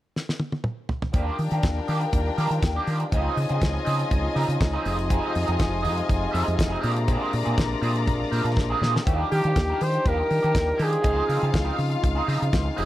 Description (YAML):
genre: disco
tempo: 121 BPM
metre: 4/4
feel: straight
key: Eb major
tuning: A4 = 442 Hz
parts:
  - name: damped 70s drum kit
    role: drums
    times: 0.2-12.9 s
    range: hi-hat, kick drum, snare drum, toms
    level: -26 LUFS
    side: equal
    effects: none
  - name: clear symphonic string section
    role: second line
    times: 1.1-12.9 s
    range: D4 to Bb5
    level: -31 LUFS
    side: left 5 dB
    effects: none
  - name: electric guitar at the edge of break-up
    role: accompaniment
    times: 1.1-12.9 s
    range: F3 to Bb4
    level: -30 LUFS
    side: right 4 dB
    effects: wah, lush chorus
  - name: dark French horn section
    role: sustained chords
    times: 1.1-12.9 s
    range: C3 to F4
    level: -31 LUFS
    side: left 1 dB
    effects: none
  - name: fingered electric bass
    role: bass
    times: 1.1-12.9 s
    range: F1 to Eb3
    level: -26 LUFS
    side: equal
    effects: none
  - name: clear flugelhorn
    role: melody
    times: 9.3-11.8 s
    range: G4 to C5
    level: -24 LUFS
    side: equal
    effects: none
room: light reverb, small room ambience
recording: none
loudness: -21 LUFS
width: side -14 dB against mid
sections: 0.0-1.1 A section; 1.1-9.1 B section; 9.1-12.9 C section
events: drum fill 0.1-1.1, 8.6-9.1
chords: 0.0 N.C.; 1.1 Ebmaj9; 3.1 Dbmaj9; 4.9 Fm7; 6.8 Bb9; 9.1 Ebmaj9; 11.0 Dbmaj9